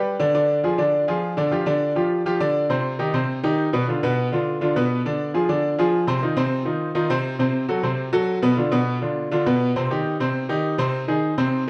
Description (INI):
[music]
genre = latin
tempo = 204 BPM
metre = 4/4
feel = straight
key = C minor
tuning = A4 = 440 Hz
[part]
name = bright baby grand piano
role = solo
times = 0.0-11.7 s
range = B2 to D5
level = -22 LUFS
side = equal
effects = slapback echo
[sound]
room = moderate plate reverb, RT60 3.3 s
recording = dark, warm production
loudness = -22 LUFS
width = mono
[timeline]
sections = 0.3-9.8 A section; 9.8-11.7 B section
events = none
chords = 0.3 Ddim; 1.5 G5; 2.7 Cmmaj7; 3.9 Bdim; 5.0 Fm6; 6.2 Cmadd11; 7.4 Am69; 8.6 Bdim; 9.8 Cm; 10.9 Ab